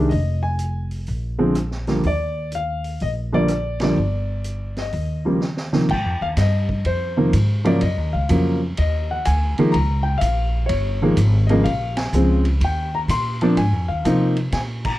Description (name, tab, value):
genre	jazz piano trio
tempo	125 BPM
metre	4/4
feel	swing 67% on 8ths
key	Eb major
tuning	A4 = 438 Hz
part	warm concert grand piano	melody	0.0-15.0 s	C3 to C6	-20 LUFS	equal	none
part	upright bass	bass	0.0-15.0 s	F1 to C3	-21 LUFS	equal	none
part	vintage drum kit	drums	0.1-14.9 s	crash cymbal, hi-hat, kick drum, ride cymbal, rim click, snare drum	-32 LUFS	right 2 dB	none
room	light reverb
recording	dark, warm production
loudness	-18 LUFS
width	side -16 dB against mid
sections	0.0-5.9 A section; 5.9-15.0 B section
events	band accent 3.7, 11.9, 14.8; drum fill 5.4-5.9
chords	0.1 Fm; 1.1 Bb; 2.0 Ebmaj7; 4.9 Ebsus2; 5.9 Ab6; 7.8 Ebm7; 8.8 Ab5; 9.7 Db6; 11.7 Bbm7; 12.6 Eb5; 13.6 Ab69